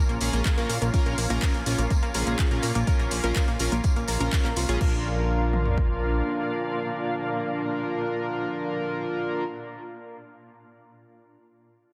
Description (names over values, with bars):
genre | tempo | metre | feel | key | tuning
progressive house | 124 BPM | 4/4 | straight | unclear | A4 = 440 Hz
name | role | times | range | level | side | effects
shimmering ambient pad | sustained chords | 0.0-9.4 s | Bb2 to F4 | -36 LUFS | equal | chorus, built-in reverb, sidechain pumping
unison pluck | arpeggios | 0.1-5.0 s | Bb3 to F6 | -35 LUFS | equal | sidechain pumping, dub echo
fat analog bass | bass | 0.1-6.2 s | Bb1 to Bb2 | -30 LUFS | equal | sidechain pumping
deep house drum kit | drums | 0.1-4.9 s | crash cymbal, handclaps, hi-hat | -36 LUFS | equal | overdrive
tambourine | percussion | 0.1-4.8 s | none | -39 LUFS | equal | none
chorused polysynth | stabs | 0.2-9.4 s | Db4 to Bb4 | -32 LUFS | equal | sidechain pumping, dub echo
deep house drum kit | drums | 0.5-5.9 s | kick drum, toms | -26 LUFS | equal | overdrive
room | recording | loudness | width
light reverb, digital ambience | dense, heavily limited modern master | -26 LUFS | mono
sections
0.0-4.8 A section; 4.8-8.7 B section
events
drop 0.0-4.8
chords
0.0 Bbm; 4.8 Bb